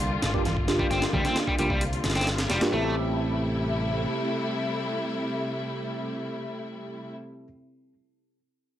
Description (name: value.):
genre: breakbeat, breaks.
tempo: 132 BPM.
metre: 4/4.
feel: straight.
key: A phrygian.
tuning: A4 = 441 Hz.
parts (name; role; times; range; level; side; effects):
warm studio string section; sustained chords; 0.0-7.1 s; C3 to F4; -30 LUFS; left 1 dB; sidechain pumping, low-pass filter.
picked electric bass; bass; 0.0-4.0 s; F1 to G2; -30 LUFS; equal; none.
breakbeat sampler-style drum kit; drums; 0.0-2.7 s; hi-hat, kick drum, snare drum; -28 LUFS; equal; none.
electronic hi-hat; drums; 0.0-2.7 s; none; barely audible; none; none.
congas; percussion; 0.2-2.1 s; none; -34 LUFS; right 2 dB; none.
tine electric piano; stabs; 0.3-7.5 s; Bb3 to A4; -32 LUFS; right 1 dB; phaser, low-pass filter, analog delay.
biting overdriven guitar; riff; 0.8-2.9 s; G3 to C4; -30 LUFS; equal; low-pass filter, analog delay.
room: moderate studio reverb, RT60 0.7 s.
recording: dry, gritty hardware recording.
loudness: -24 LUFS.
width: side -12 dB against mid.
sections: 0.0-2.7 A section; 2.7-6.4 B section.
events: none.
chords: 0.0 Gm7; 2.7 Am7.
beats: 0.00 0.45 | 0.91 1.36 1.82 2.27 | 2.73 3.18 3.63 4.09 | 4.54 5.00 5.45 5.91.